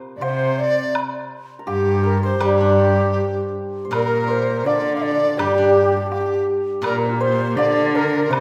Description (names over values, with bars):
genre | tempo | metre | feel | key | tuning
chinese traditional, Chinese chamber ensemble | 82 BPM | 2/4 | rubato | G yu mode | A4 = 442 Hz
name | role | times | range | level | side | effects
hammered dulcimer | second line | 0.0-8.4 s | F4 to D5 | -26 LUFS | equal | none
xiao | melody | 0.2-8.4 s | G4 to F5 | -26 LUFS | equal | none
large dizi | second line | 0.2-8.4 s | D4 to F5 | -27 LUFS | equal | none
warm cello | second line | 0.2-8.4 s | G2 to D3 | -25 LUFS | equal | none
woodblock | percussion | 0.2-8.4 s | none | -31 LUFS | equal | none
steel-string zither | accompaniment | 2.4-8.4 s | Bb2 to D4 | -27 LUFS | equal | none
room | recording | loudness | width
wet recital hall reverb, RT60 1.7 s | none | -19 LUFS | mono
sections
0.0-3.9 A section; 3.9-8.4 B section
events
none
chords
none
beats
0.22 | 0.95 1.67 | 2.41 3.15 | 3.92 4.66 | 5.39 6.12 | 6.84 7.58 | 8.32